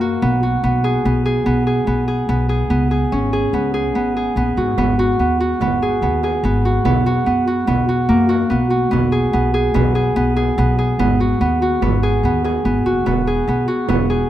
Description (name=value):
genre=contemporary instrumental, chamber music in an uneven meter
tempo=145 BPM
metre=5/4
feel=straight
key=G# minor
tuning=A4 = 439 Hz
part: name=Celtic harp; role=arpeggios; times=0.0-14.3 s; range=A#3 to G#4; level=-17 LUFS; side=equal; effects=none
part: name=upright bass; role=bass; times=0.0-14.2 s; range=E1 to F#2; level=-20 LUFS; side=equal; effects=none
part: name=frame drum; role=percussion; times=4.8-14.1 s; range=none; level=-26 LUFS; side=right 9 dB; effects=none
room=light reverb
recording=close, detailed microphones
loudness=-15 LUFS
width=side -12 dB against mid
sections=0.0-13.1 A section; 13.1-14.3 B section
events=none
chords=0.0 B5; 0.6 G#m/B; 2.7 C#5; 4.8 G#m7; 6.9 B5; 8.9 G#m/B; 11.0 G#m7; 13.1 E